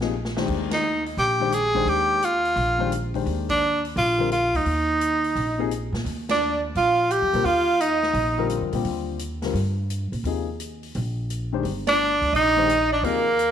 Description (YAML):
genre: modal jazz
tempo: 172 BPM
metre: 4/4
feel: swing 65% on 8ths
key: Eb major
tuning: A4 = 440 Hz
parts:
  - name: warm concert grand piano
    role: accompaniment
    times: 0.0-13.2 s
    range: C3 to C5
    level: -28 LUFS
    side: left 10 dB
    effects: none
  - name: upright bass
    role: bass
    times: 0.0-13.5 s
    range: G1 to Bb2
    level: -29 LUFS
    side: equal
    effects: none
  - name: swinging big-band drum kit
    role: drums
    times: 0.0-13.5 s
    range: crash cymbal, hi-hat, kick drum, ride cymbal, snare drum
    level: -35 LUFS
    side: equal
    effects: none
  - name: bright tenor saxophone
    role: melody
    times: 0.7-8.5, 11.9-13.5 s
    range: Bb3 to Ab4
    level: -21 LUFS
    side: right 1 dB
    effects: none
  - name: bright alto saxophone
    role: second line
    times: 6.3-8.5, 11.9-13.5 s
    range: Bb4 to G5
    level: -26 LUFS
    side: right 8 dB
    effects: none
room: moderate echo chamber reverb, RT60 1.4 s, small room reverb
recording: 1960s-style stereo with parts hard left and right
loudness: -20 LUFS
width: side -9 dB against mid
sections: 0.0-13.5 A section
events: drum fill 0.1-0.5; band accent 0.6, 3.4, 6.2, 11.8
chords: 0.0 Ebmaj9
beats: 0.13 | 0.47 0.82 1.17 1.52 | 1.87 2.22 2.56 2.91 | 3.26 3.61 3.96 4.31 | 4.66 5.01 5.36 5.71 | 6.05 6.41 6.75 7.10 | 7.45 7.80 8.15 8.50 | 8.85 9.20 9.55 9.90 | 10.25 10.60 10.95 11.29 | 11.64 11.99 12.34 12.69 | 13.04 13.38